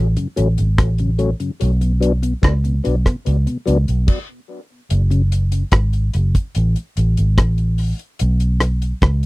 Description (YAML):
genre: dub reggae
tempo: 73 BPM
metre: 4/4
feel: straight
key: F# minor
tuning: A4 = 440 Hz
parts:
  - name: vintage muted fingered electric bass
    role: bass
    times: 0.0-9.3 s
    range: F#1 to C#2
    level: -16 LUFS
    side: equal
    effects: none
  - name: mellow tonewheel organ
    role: accompaniment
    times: 0.2-5.2 s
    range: F#2 to D4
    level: -22 LUFS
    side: left 3 dB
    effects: slow rotary speaker, high-pass filter, low-pass filter, tape echo
  - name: deep reggae drum kit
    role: drums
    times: 0.2-9.3 s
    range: crash cymbal, hi-hat, kick drum, rim click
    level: -17 LUFS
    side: equal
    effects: none
room: little or no reverb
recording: dry, close 1970s-style studio recording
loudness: -15 LUFS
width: side -21 dB against mid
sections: 0.0-4.9 A section; 4.9-9.3 B section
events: stop 4.1-4.9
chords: 0.0 F#m; 1.6 Bm; 4.9 F#m; 8.2 Bsus2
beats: 0.78 | 1.61 2.43 3.26 4.08 | 4.91 5.73 6.56 7.38 | 8.21 9.03